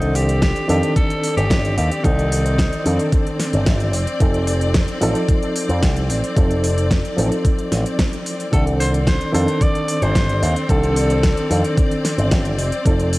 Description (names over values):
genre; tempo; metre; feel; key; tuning
nu-disco, nu disco; 111 BPM; 4/4; straight; C dorian; A4 = 445 Hz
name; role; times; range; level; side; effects
breathy tenor saxophone; melody; 0.0-3.1, 8.5-11.7 s; Eb4 to D5; -25 LUFS; equal; cassette tape, analog delay
barky reed electric piano; accompaniment; 0.0-13.2 s; Eb3 to D5; -22 LUFS; equal; fast tremolo, cassette tape, analog delay
bright studio string section; sustained chords; 0.0-13.2 s; C4 to D5; -27 LUFS; left 2 dB; sidechain pumping, cassette tape
picked electric bass with an envelope filter; bass; 0.0-13.2 s; F1 to F2; -20 LUFS; equal; sidechain pumping
pop drum kit; drums; 0.0-13.2 s; hi-hat, snare drum; -25 LUFS; equal; studio reverb, cassette tape
electronic kick drum; drums; 0.4-13.0 s; none; -18 LUFS; equal; studio reverb, cassette tape
room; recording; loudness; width
light reverb; home recording on cassette; -16 LUFS; side -20 dB against mid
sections
0.0-13.2 A section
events
none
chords
0.0 Cm69; 3.9 F7; 8.5 Cm69; 12.6 F7